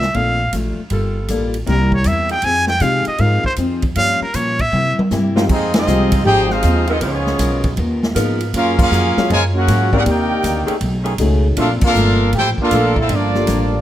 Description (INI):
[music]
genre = jazz, big band swing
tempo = 158 BPM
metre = 4/4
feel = swing 66% on 8ths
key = F minor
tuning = A4 = 440 Hz
[part]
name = trumpet with straight mute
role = melody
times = 0.0-5.0 s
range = Bb4 to Ab5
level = -18 LUFS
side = equal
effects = none
[part]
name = picked steel-string acoustic guitar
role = accompaniment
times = 0.0-13.7 s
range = G2 to Bb4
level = -25 LUFS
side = left 3 dB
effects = none
[part]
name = upright bass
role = bass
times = 0.0-13.8 s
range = G1 to C3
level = -18 LUFS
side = equal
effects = none
[part]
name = swinging big-band drum kit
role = drums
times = 0.0-13.6 s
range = crash cymbal, hi-hat, kick drum, ride cymbal, snare drum, toms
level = -22 LUFS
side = equal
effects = none
[part]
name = dark concert grand piano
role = accompaniment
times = 0.1-13.5 s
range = F3 to Bb4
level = -23 LUFS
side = left 4 dB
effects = none
[part]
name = warm saxophone section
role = sustained chords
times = 0.9-2.4, 5.4-13.1 s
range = Eb3 to D5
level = -25 LUFS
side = equal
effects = none
[part]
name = clear trumpet section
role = melody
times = 5.5-13.8 s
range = Bb3 to Ab5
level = -20 LUFS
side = equal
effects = none
[part]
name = clear trombone section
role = second line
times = 5.5-13.8 s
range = Db3 to G4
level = -19 LUFS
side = right 1 dB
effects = none
[sound]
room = light reverb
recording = none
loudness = -14 LUFS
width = side -12 dB against mid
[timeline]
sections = 0.0-5.5 A section; 5.5-13.8 B section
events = muted trumpet solo 0.0-5.5; drum fill 4.7-5.5; band accent 5.7, 8.7, 11.8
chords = 0.0 Bbmaj7; 0.9 Gm9; 1.7 C7; 2.4 Fm7; 4.0 Gm7b5; 4.7 C7; 5.5 Fm7; 7.0 Db13; 8.5 Gbmaj9; 10.1 Cm9; 10.8 B13; 11.6 Bbmaj7; 13.1 Gm9